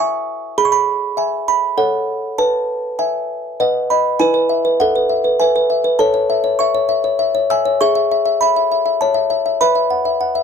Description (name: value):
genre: classical, lullaby for music box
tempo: 100 BPM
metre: 3/4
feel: straight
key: E major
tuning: A4 = 440 Hz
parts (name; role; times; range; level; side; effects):
- music box; solo; 0.0-10.4 s; E4 to E6; -14 LUFS; equal; none
room: moderate booth ambience, RT60 0.2 s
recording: dark, warm production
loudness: -14 LUFS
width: side -6 dB against mid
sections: 0.0-4.2 A section; 4.2-10.4 B section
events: none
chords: 0.0 E; 0.6 E/G#; 1.8 F#m/A; 2.4 E/B; 3.6 B; 4.2 E; 6.0 A; 7.8 E/G#; 9.0 A/C#; 9.6 Bsus4